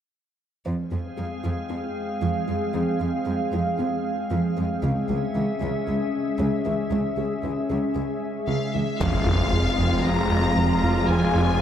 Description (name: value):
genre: cinematic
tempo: 115 BPM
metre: 4/4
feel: straight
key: F harmonic minor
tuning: A4 = 438 Hz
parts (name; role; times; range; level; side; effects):
- glassy FM pad; sustained chords; 1.0-11.6 s; Ab3 to F5; -26 LUFS; left 1 dB; ensemble chorus, built-in reverb
- resonant blip pluck; arpeggios; 0.7-11.5 s; Db3 to F4; -30 LUFS; right 2 dB; phaser, digital delay
- clear studio cello section; bass; 0.7-11.6 s; Db2 to F2; -28 LUFS; right 1 dB; none
- warm symphonic violin section; melody; 8.5-11.6 s; Fb5 to Bb5; -28 LUFS; left 4 dB; none
- warm symphonic viola section; accompaniment; 9.0-11.6 s; Ab3 to F4; -30 LUFS; right 1 dB; none
- round analog bass; riff; 9.0-11.5 s; F2 to F3; -25 LUFS; right 1 dB; none
- snarling distorted saw bass; bass; 9.0-11.6 s; F1; -28 LUFS; equal; distortion
- impact; sound effects; 9.0-11.1 s; none; -31 LUFS; left 1 dB; none
room: wet scoring stage reverb, RT60 1.9 s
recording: none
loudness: -22 LUFS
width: side -9 dB against mid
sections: 0.7-9.0 A section; 9.0-11.6 B section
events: impact 9.0-11.1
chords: 0.7 Fm; 4.8 Dbm; 9.0 Fm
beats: | 0.66 1.18 1.70 2.22 | 2.74 3.27 3.79 4.31 | 4.83 5.35 5.87 6.40 | 6.92 7.44 7.96 8.48 | 9.01 9.53 10.05 10.57 | 11.09 11.61